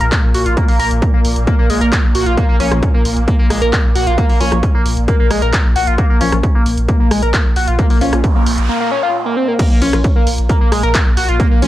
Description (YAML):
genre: driving peak-time techno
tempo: 133 BPM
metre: 4/4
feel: straight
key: unclear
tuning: A4 = 440 Hz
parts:
  - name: overdriven synth lead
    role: riff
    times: 0.0-11.7 s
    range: Ab3 to Bb4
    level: -18 LUFS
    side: equal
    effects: phaser, sidechain pumping, analog delay
  - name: warm sub bass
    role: bass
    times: 0.0-11.7 s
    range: Bb1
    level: -18 LUFS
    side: equal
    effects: tube saturation, sidechain pumping, low-pass filter
  - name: swarming drone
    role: drone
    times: 0.0-11.7 s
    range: Bb2 to Bb3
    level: -23 LUFS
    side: right 1 dB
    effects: built-in reverb, sidechain pumping
  - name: punchy analog drum machine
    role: drums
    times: 0.0-11.7 s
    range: crash cymbal, handclaps, hi-hat, rim click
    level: -22 LUFS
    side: equal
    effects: sidechain pumping on hats, sidechain pumping on cymbals
  - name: electronic kick drum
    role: drums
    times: 0.1-11.5 s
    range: none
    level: -14 LUFS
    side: equal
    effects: overdrive
  - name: filtered dub chord stab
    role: stabs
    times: 2.6-11.7 s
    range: F3 to F4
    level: -23 LUFS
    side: left 2 dB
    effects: phaser, lush chorus, sidechain pumping, analog delay
  - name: noise sweep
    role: sound effects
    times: 8.2-9.6 s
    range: none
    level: -25 LUFS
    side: right 6 dB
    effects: none
room: digital ambience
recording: dry, gritty hardware recording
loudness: -11 LUFS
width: side -14 dB against mid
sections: 0.0-9.6 A section; 9.6-11.7 B section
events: noise sweep 8.2-9.6; break 8.7-9.6; drop 9.6-11.7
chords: 0.0 Bb5